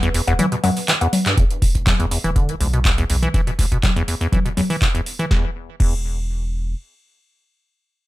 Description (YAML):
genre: acid house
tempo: 122 BPM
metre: 4/4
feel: straight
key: unclear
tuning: A4 = 439 Hz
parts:
  - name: dark analog pad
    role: sustained chords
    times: 0.0-1.4 s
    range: B4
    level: -36 LUFS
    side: right 3 dB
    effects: none
  - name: acid bass, square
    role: riff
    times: 0.0-5.9 s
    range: E1 to E3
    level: -22 LUFS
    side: equal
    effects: ping-pong delay
  - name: saturated sub bass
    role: bass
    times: 0.0-6.7 s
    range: E1 to B1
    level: -23 LUFS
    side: equal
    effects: sidechain pumping
  - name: booming analog drum machine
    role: drums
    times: 0.0-6.0 s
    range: congas, cowbell, crash cymbal, handclaps, hi-hat, snare drum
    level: -22 LUFS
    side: left 1 dB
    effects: overdrive
  - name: electronic kick drum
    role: drums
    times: 1.4-6.0 s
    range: none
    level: -18 LUFS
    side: equal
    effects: overdrive
room: light reverb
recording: none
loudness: -17 LUFS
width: side -17 dB against mid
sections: 0.0-1.4 A section; 1.4-5.3 B section; 5.3-8.1 C section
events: drop 0.0-1.4; drum fill 0.9-1.4; band accent 1.3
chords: 0.0 E5; 5.3 N.C.